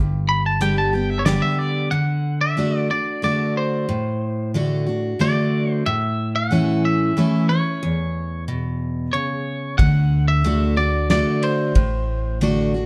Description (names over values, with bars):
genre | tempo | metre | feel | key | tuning
honky-tonk and classic country | 92 BPM | 3/4 | straight | unclear | A4 = 440 Hz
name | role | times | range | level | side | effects
picked steel-string acoustic guitar | accompaniment | 0.0-12.9 s | E2 to G4 | -23 LUFS | equal | none
upright bass | bass | 0.0-1.4, 9.8-12.9 s | G1 to D2 | -24 LUFS | equal | none
twangy electric guitar | melody | 0.3-12.4 s | C5 to B5 | -26 LUFS | equal | none
damped 70s drum kit | drums | 0.6-1.4, 9.8-12.6 s | hi-hat, kick drum, ride cymbal, snare drum | -21 LUFS | equal | none
room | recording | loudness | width
wet studio reverb, RT60 0.8 s | dark, warm production | -21 LUFS | mono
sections
0.0-1.9 A section; 1.9-12.9 B section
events
clean electric guitar solo 0.0-1.9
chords
0.0 G; 1.9 D; 5.9 A; 9.8 D